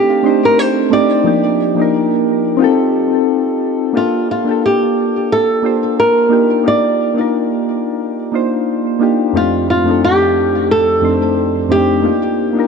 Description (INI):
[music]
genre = chillout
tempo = 89 BPM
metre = 4/4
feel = swing 55% on 16ths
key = G minor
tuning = A4 = 442 Hz
[part]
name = flamenco guitar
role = melody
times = 0.0-12.7 s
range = F4 to D5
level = -15 LUFS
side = right 1 dB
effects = vintage 12-bit sampler grit, digital delay
[part]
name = soft electric-piano-like synth keys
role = accompaniment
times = 0.0-12.7 s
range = F2 to C5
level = -14 LUFS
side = moving between left 4 dB and right 3 dB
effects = chorus, auto-pan, low-pass filter, digital delay
[sound]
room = moderate plate reverb, RT60 3.2 s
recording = none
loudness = -12 LUFS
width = side -5 dB against mid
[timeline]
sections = 0.0-4.0 A section; 4.0-12.7 B section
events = none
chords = 0.0 F13/A (rootless); 1.3 Ebmaj9; 2.6 F9; 4.0 Gm9; 6.3 Ebmaj9; 9.3 F13; 12.0 Ebmaj9